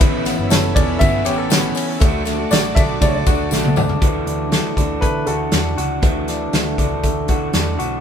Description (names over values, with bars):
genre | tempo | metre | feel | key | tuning
jangly indie pop | 120 BPM | 4/4 | straight | D major | A4 = 440 Hz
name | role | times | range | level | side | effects
electric guitar at the edge of break-up | accompaniment | 0.0-8.0 s | A2 to F#4 | -24 LUFS | right 4 dB | none
string machine, cellos | sustained chords | 0.0-4.0 s | F#4 to E6 | -31 LUFS | equal | ensemble chorus
direct-recorded clean electric guitar | arpeggios | 0.0-8.0 s | E3 to A4 | -23 LUFS | left 5 dB | spring reverb
vintage muted picked electric bass | bass | 0.0-8.0 s | E1 to D3 | -25 LUFS | right 1 dB | none
modern studio drum kit | drums | 0.0-7.9 s | hi-hat, kick drum, ride cymbal, snare drum, toms | -17 LUFS | equal | none
tambourine | percussion | 0.0-3.9 s | none | -33 LUFS | left 6 dB | none
warm upright piano | melody | 0.5-5.7 s | A4 to E5 | -23 LUFS | right 1 dB | none
room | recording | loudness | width
light reverb | band playing live in one room | -15 LUFS | side -8 dB against mid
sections
0.0-4.0 A section; 4.0-8.0 B section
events
drum fill 3.5-4.0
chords
0.0 Aadd9; 2.0 D; 4.0 Dadd9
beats
| 0.01 0.51 1.01 1.51 | 2.01 2.51 3.01 3.52 | 4.02 4.52 5.02 5.52 | 6.03 6.53 7.04 7.54